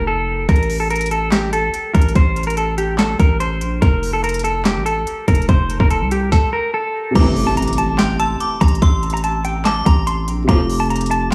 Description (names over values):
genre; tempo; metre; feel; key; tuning
hip hop, trap; 144 BPM; 4/4; half-time; A phrygian; A4 = 438 Hz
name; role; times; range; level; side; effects
semi-hollow electric guitar; melody; 0.0-11.3 s; G4 to C6; -23 LUFS; equal; low-pass filter, diffuse ambient delay
distorted 808-style bass; bass; 0.0-11.3 s; F1 to C2; -22 LUFS; equal; distortion
trap drum kit; drums; 0.5-11.3 s; crash cymbal, handclaps, hi-hat, kick drum, snare drum; -19 LUFS; equal; none
dark concert grand piano; accompaniment; 7.1-11.3 s; C3 to F4; -25 LUFS; equal; low-pass filter
metallic FM bell; second line; 7.2-11.3 s; C6 to E6; -28 LUFS; equal; chorus, diffuse ambient delay
bright brass ensemble; stabs; 7.2-7.3, 10.5-10.6 s; A2 to F3; -30 LUFS; equal; diffuse ambient delay
impact; sound effects; 7.3-8.8 s; none; -29 LUFS; equal; none
room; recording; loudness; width
light reverb; vinyl crackle, small room ambience; -17 LUFS; mono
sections
0.0-7.2 A section; 7.2-11.3 B section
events
break 0.0-0.5; stop 6.3-7.2; impact 7.2-8.8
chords
0.5 Am; 3.8 F; 7.2 Am; 10.5 F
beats
0.07 | 0.49 0.90 1.32 1.74 | 2.15 2.57 2.99 3.40 | 3.82 4.24 4.65 5.07 | 5.49 5.90 6.32 6.74 | 7.15 7.57 7.99 8.40 | 8.82 9.24 9.65 10.07 | 10.49 10.90 11.32